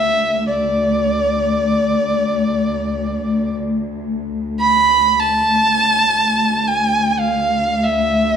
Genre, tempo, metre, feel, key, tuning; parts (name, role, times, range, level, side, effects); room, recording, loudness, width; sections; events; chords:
Turkish makam ensemble; free time; D makam nikriz; A4 = 440 Hz
dark violin; melody; 0.0-8.4 s; D5 to B5; -16 LUFS; right 1 dB
rich studio cello section; drone; 0.0-8.4 s; D2; -20 LUFS; left 2 dB
wet recital hall reverb, RT60 1.4 s; -15 LUFS; side -8 dB against mid
0.0-8.4 A section